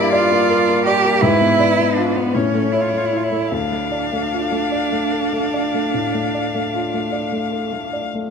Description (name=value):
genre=classical, slow romantic movement for piano trio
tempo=48-55 BPM (dotted quarters)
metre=12/8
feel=rubato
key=D minor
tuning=A4 = 442 Hz
part: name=rich violin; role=melody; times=0.0-8.1 s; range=B4 to F5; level=-24 LUFS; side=left 9 dB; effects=none
part: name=rich cello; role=second line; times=0.0-7.9 s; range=B3 to G4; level=-19 LUFS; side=right 5 dB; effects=none
part: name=warm baby grand piano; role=accompaniment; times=0.0-8.3 s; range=D2 to D5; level=-20 LUFS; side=left 2 dB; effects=none
room=moderate scoring stage reverb, RT60 1.8 s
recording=minimal, uncompressed stereo recording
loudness=-16 LUFS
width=side -6 dB against mid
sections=0.0-8.3 A section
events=none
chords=0.0 Gm; 1.2 G#dim7; 2.3 A; 3.5 Dm